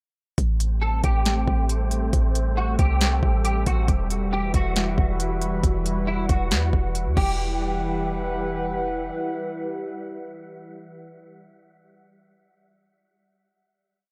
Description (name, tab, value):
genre	hip hop, atmospheric cloud-rap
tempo	137 BPM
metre	4/4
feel	half-time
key	E minor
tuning	A4 = 440 Hz
part	warbly tape-like pad	sustained chords	0.8-11.0 s	E3 to F#5	-32 LUFS	equal	chorus, built-in reverb, phaser, sidechain pumping
part	clean 808-style bass	bass	0.4-9.1 s	E1 to E2	-26 LUFS	equal	none
part	smooth R&B drum kit	drums	0.4-7.3 s	crash cymbal, hi-hat, kick drum, snare drum	-27 LUFS	equal	overdrive
part	wind-like tuned noise texture	texture	0.8-11.0 s	G3 to F#5	-38 LUFS	equal	built-in reverb
part	semi-hollow electric guitar	melody	0.8-8.7 s	E4 to A4	-32 LUFS	equal	ensemble chorus, analog delay
room	light reverb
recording	echo-heavy mix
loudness	-24 LUFS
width	mono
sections	0.4-7.4 verse; 7.4-10.9 final hit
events	none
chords	0.4 Am7; 3.9 Emadd9